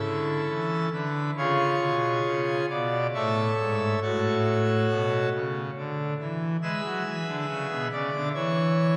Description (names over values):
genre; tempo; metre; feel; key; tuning
classical, chorale-style piece for pipe organ; 68 BPM; 4/4; rubato; unclear; A4 = 440 Hz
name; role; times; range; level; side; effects
pipe organ, full organ; solo; 0.0-9.0 s; G#2 to E5; -27 LUFS; equal; none
room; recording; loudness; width
wet church reverb, RT60 3.0 s; heard from further back in the room; -27 LUFS; mono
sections
0.0-9.0 A section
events
none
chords
0.0 A; 1.4 C#7; 3.1 F#m7; 4.9 Bm; 6.6 E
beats
0.48 1.37 2.26 | 3.13 4.02 4.89 5.77 | 6.63 7.49 8.35